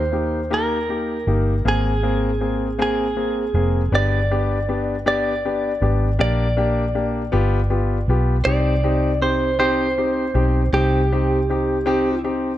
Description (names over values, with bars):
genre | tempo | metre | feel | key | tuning
six-eight pop ballad | 53 BPM (dotted quarters) | 6/8 | straight | C harmonic minor from 8.5 s | A4 = 441 Hz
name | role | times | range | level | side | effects
direct-recorded clean electric guitar | melody | 0.0-12.2 s | G4 to D5 | -23 LUFS | right 2 dB | none
vintage muted fingered electric bass | bass | 0.0-12.6 s | F1 to Eb2 | -21 LUFS | equal | none
clear concert grand piano | accompaniment | 0.1-12.5 s | Bb3 to Ab4 | -22 LUFS | left 3 dB | none
room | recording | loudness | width
light reverb, studio ambience | dark, warm production, nothing above 10.8 kHz | -18 LUFS | side -13 dB against mid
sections
0.0-8.5 A section; 8.5-12.6 B section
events
none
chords
0.0 Eb; 1.6 Abadd9; 3.9 G; 6.2 Bb6; 7.3 G7; 8.5 Cm